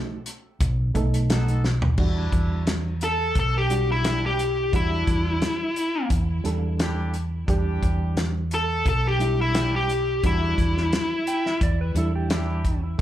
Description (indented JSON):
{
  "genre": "straight-eighth soul blues",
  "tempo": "87 BPM",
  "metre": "4/4",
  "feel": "swing 54% on 16ths",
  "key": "E minor",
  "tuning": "A4 = 440 Hz",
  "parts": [
    { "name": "clean lap steel guitar", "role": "second line", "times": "0.0-0.2, 11.3-12.8 s", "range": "E4 to G5", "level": "-33 LUFS", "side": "right 3 dB", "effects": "plate reverb, slapback echo, tape echo" },
    { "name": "reed electric piano", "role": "accompaniment", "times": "0.0-13.0 s", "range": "G3 to A4", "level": "-31 LUFS", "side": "right 4 dB", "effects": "overdrive, fast tremolo, slapback echo" },
    { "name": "warm soul drum kit", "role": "drums", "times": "0.3-13.0 s", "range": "crash cymbal, hi-hat, kick drum, snare drum, toms", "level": "-25 LUFS", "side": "equal", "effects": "none" },
    { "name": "hollow-body short-scale fingered electric bass", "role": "bass", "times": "0.6-13.0 s", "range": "B1 to E2", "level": "-24 LUFS", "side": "equal", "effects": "none" },
    { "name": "clear horn section", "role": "sustained chords", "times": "1.3-13.0 s", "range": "G3 to A4", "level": "-37 LUFS", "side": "equal", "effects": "plate reverb" },
    { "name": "smooth overdriven lead guitar", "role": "melody", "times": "3.0-11.6 s", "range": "E4 to A4", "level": "-25 LUFS", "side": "left 1 dB", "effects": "plate reverb, slapback echo, tape echo" }
  ],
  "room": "little or no reverb",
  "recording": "live gig heard through the venue's PA, club reverb",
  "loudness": "-21 LUFS",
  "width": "side -12 dB against mid",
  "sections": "0.0-2.0 A section; 2.0-13.0 B section",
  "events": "drum fill 1.6-2.0",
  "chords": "0.0 B7; 2.0 Em7"
}